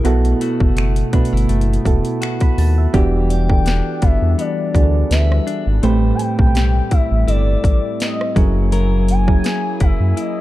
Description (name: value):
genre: contemporary R&B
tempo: 83 BPM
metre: 4/4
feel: swing 54% on 16ths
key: E minor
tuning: A4 = 440 Hz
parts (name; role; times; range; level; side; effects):
- soft electric-piano-like synth keys; accompaniment; 0.0-10.4 s; A2 to B5; -22 LUFS; right 4 dB; chorus
- hollow soft pad; sustained chords; 0.0-10.4 s; E3 to G#5; -27 LUFS; left 1 dB; chorus
- direct-recorded clean electric guitar; arpeggios; 0.0-10.4 s; B2 to C5; -26 LUFS; left 8 dB; digital delay
- round analog bass; bass; 0.0-10.1 s; E1 to F#2; -16 LUFS; equal; none
- trap drum kit; drums; 0.0-10.4 s; finger snaps, hi-hat, kick drum, rim click, snare drum; -17 LUFS; equal; overdrive
- gliding portamento lead; melody; 3.3-10.4 s; D5 to A5; -24 LUFS; left 1 dB; chorus, digital delay
- glassy synth bell; texture; 3.3-10.4 s; A4 to D5; -34 LUFS; left 2 dB; chorus, digital delay
room: little or no reverb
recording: dark, warm production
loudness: -14 LUFS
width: side -16 dB against mid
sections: 0.0-2.9 A section; 2.9-10.4 B section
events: none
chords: 0.0 B7sus4; 2.9 Em7; 5.8 Am7; 8.4 F#9